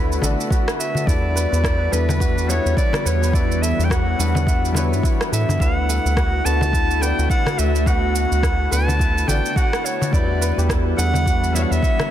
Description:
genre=organic downtempo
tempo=106 BPM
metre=4/4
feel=swing 58% on 16ths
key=E dorian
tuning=A4 = 436 Hz
part: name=bright clarinet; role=melody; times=0.0-12.1 s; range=B4 to A5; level=-24 LUFS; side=equal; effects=ping-pong delay, shimmer reverb
part: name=felt-muted upright piano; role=accompaniment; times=0.0-12.1 s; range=G3 to D5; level=-28 LUFS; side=left 4 dB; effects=sidechain pumping, ping-pong delay, shimmer reverb
part: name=warbly tape-like pad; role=sustained chords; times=0.0-12.1 s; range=D3 to F#4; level=-28 LUFS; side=equal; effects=chorus, built-in reverb, phaser, sidechain pumping, shimmer reverb
part: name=santur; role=arpeggios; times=0.0-12.1 s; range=E4 to B4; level=-29 LUFS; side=equal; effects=ping-pong delay, shimmer reverb
part: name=round analog bass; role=bass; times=0.0-11.8 s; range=A1 to A2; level=-20 LUFS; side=equal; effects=none
part: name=electronic shaker and rim click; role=drums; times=0.1-12.1 s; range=none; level=-27 LUFS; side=right 2 dB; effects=overdrive, soft clipping on snare
part: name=frame drum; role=percussion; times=0.2-12.1 s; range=none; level=-27 LUFS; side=left 2 dB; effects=none
part: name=electronic kick drum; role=drums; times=0.5-12.0 s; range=none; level=-20 LUFS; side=equal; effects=none
room=light reverb, studio reverb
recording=dense, heavily limited modern master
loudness=-16 LUFS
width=side -11 dB against mid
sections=0.0-12.1 A section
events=none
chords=0.0 D6; 1.1 Em7; 5.6 D6; 10.1 Em7

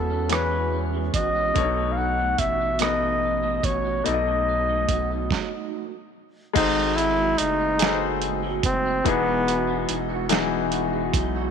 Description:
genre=slow six-eight R&B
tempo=48 BPM (dotted quarters)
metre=6/8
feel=straight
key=E major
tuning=A4 = 439 Hz
part: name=breathy flugelhorn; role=melody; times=0.0-10.0 s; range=B3 to F#5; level=-24 LUFS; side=equal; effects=tape echo
part: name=electric guitar through a small old amp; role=second line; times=0.0-11.5 s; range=G#2 to F#4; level=-31 LUFS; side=right 14 dB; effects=ensemble chorus
part: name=clear baby grand piano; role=accompaniment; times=0.0-11.5 s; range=B2 to E5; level=-27 LUFS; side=left 12 dB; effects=none
part: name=round analog bass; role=bass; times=0.0-11.5 s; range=E1 to E2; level=-30 LUFS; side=equal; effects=none
part: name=dusty soul sampler-style drum kit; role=drums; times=0.3-11.3 s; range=crash cymbal, hi-hat, kick drum, rim click, snare drum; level=-26 LUFS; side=right 5 dB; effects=overdrive
room=light reverb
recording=1960s-style stereo with parts hard left and right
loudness=-21 LUFS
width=side -7 dB against mid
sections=0.0-6.6 A section; 6.6-11.5 B section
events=stop 5.3-6.6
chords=0.0 E69; 1.6 B7; 6.6 G#7b9; 9.1 Emaj9

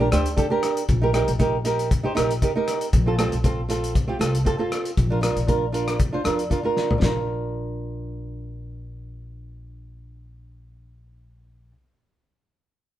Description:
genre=calypso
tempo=117 BPM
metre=4/4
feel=swing 53% on 16ths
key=Bb major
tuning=A4 = 444 Hz
part: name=flamenco guitar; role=accompaniment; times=0.0-11.7 s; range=C4 to C5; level=-24 LUFS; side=right 2 dB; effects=none
part: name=upright bass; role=bass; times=0.0-11.7 s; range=Bb1 to F2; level=-26 LUFS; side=equal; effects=none
part: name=cloth-damped thuddy drum kit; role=drums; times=0.1-7.1 s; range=hi-hat, kick drum, rim click, snare drum, toms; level=-24 LUFS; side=left 1 dB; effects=none
room=light reverb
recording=band playing live in one room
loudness=-20 LUFS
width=side -13 dB against mid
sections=0.0-7.0 A section; 7.0-11.1 B section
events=drum fill 6.8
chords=0.0 Gm; 0.9 Eb/Bb; 2.9 F/Bb; 5.0 Bb

